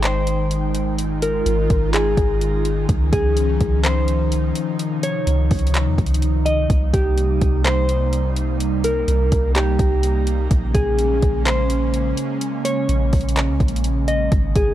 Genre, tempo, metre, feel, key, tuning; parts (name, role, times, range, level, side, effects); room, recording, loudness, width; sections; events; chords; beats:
hip hop, atmospheric cloud-rap; 126 BPM; 4/4; half-time; A4 = 436 Hz
mellow electric guitar; melody; 0.0-14.7 s; G4 to Eb5; -23 LUFS; equal; analog delay
airy breathy pad; sustained chords; 0.0-14.7 s; C3 to G5; -24 LUFS; equal; chorus, sidechain pumping
soft 808-style bass; bass; 0.0-14.7 s; Ab1 to F2; -20 LUFS; equal
smooth R&B drum kit; drums; 0.0-14.7 s; handclaps, hi-hat, kick drum; -21 LUFS; equal; overdrive
digital ambience; dry, gritty hardware recording; -17 LUFS; side -13 dB against mid
0.0-14.7 A section
0.0 Abmaj7; 2.9 Dbmaj9; 6.7 Cm7; 10.5 Bbm9
0.03 0.51 | 0.98 1.46 1.94 2.41 | 2.89 3.37 3.84 4.32 | 4.79 5.27 5.75 6.22 | 6.70 7.17 7.65 8.13 | 8.60 9.08 9.56 10.03 | 10.51 10.98 11.46 11.94 | 12.41 12.89 13.37 13.84 | 14.32